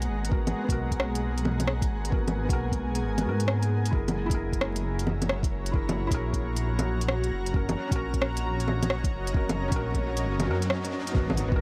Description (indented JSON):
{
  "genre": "future garage",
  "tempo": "133 BPM",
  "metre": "4/4",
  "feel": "swing 65% on 16ths",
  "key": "unclear",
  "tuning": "A4 = 440 Hz",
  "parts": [
    { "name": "felt-muted upright piano", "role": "accompaniment", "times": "0.0-11.6 s", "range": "B3 to A#4", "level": "-37 LUFS", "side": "equal", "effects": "sidechain pumping, tape echo" },
    { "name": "granular cloud pad", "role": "sustained chords", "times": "0.0-11.6 s", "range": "G#3 to A#5", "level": "-37 LUFS", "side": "equal", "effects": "built-in reverb, sidechain pumping" },
    { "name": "dark detuned saw bass", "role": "bass", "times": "0.0-11.6 s", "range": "F#1 to G#2", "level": "-32 LUFS", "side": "equal", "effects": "sidechain pumping" },
    { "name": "organic electronic drum kit", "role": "drums", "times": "0.0-11.5 s", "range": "bongos, hi-hat, rim click", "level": "-33 LUFS", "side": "equal", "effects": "overdrive" },
    { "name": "wind-like tuned noise texture", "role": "texture", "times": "0.0-11.2 s", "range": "A#3 to A#5", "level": "-45 LUFS", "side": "equal", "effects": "none" },
    { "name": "electronic kick drum", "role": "drums", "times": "0.3-11.6 s", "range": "none", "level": "-30 LUFS", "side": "equal", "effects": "overdrive" },
    { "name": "riser and impact", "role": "sound effects", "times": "9.2-11.6 s", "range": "none", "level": "-40 LUFS", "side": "equal", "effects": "none" }
  ],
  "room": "light reverb",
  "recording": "vinyl crackle",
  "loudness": "-28 LUFS",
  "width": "mono",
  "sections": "0.0-11.2 A section",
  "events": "riser 9.2-11.2; impact 11.2-11.6",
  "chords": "0.0 G#m9; 3.9 F#7; 7.5 D#m7/F#"
}